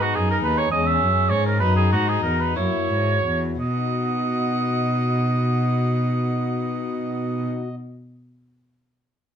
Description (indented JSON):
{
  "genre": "classical, baroque-style sonata movement with continuo",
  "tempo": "56-72 BPM (dotted quarters)",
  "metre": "6/8",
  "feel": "straight",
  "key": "B major",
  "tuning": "A4 = 440 Hz",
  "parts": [
    { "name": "dark violin", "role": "melody", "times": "0.0-7.5 s", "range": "C#4 to F#5", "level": "-30 LUFS", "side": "left 10 dB", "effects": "none" },
    { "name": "warm oboe", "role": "second line", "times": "0.0-7.5 s", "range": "F#4 to E5", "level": "-24 LUFS", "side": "right 5 dB", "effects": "none" },
    { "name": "pipe organ, principal", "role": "accompaniment", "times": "0.0-7.8 s", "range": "D#2 to D#5", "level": "-27 LUFS", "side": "left 2 dB", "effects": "none" },
    { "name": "rich cello", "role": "bass", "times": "0.2-7.5 s", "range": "D#2 to B2", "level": "-23 LUFS", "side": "equal", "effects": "none" }
  ],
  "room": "moderate large studio reverb, RT60 0.9 s",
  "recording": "dark, warm production",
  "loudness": "-20 LUFS",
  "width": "side -8 dB against mid",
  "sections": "0.0-3.6 A section; 3.6-7.8 B section",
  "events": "slowing down 0.0-3.6",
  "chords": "0.0 G#m; 0.7 C#m/E; 1.6 B/F#; 2.6 F#7; 3.6 B"
}